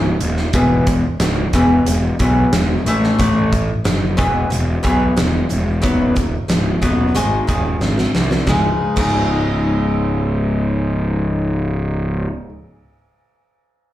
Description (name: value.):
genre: quiet-loud alternative rock.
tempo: 91 BPM.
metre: 4/4.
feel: straight.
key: C# minor.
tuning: A4 = 440 Hz.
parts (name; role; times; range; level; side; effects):
picked acoustic archtop guitar; arpeggios; 0.0-12.5 s; C#2 to D#4; -19 LUFS; left 2 dB; slapback echo.
fuzz picked electric bass; bass; 0.0-12.3 s; C#1 to B#1; -17 LUFS; equal; overdrive.
huge arena drum kit; drums; 0.2-9.2 s; crash cymbal, hi-hat, kick drum, snare drum; -21 LUFS; equal; none.
room: light reverb.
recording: live gig heard through the venue's PA, club reverb.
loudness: -14 LUFS.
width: side -13 dB against mid.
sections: 0.0-8.5 A section; 8.5-11.1 B section.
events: drum fill 7.8-8.5.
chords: 0.0 C#sus2; 0.5 E5; 2.9 A5; 4.2 E5; 5.8 Badd9/D#; 7.2 G#; 8.5 C#sus2.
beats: | 0.54 1.20 1.86 2.53 | 3.19 3.85 4.51 5.17 | 5.83 6.49 7.16 7.82 | 8.47 9.14 9.80 10.46.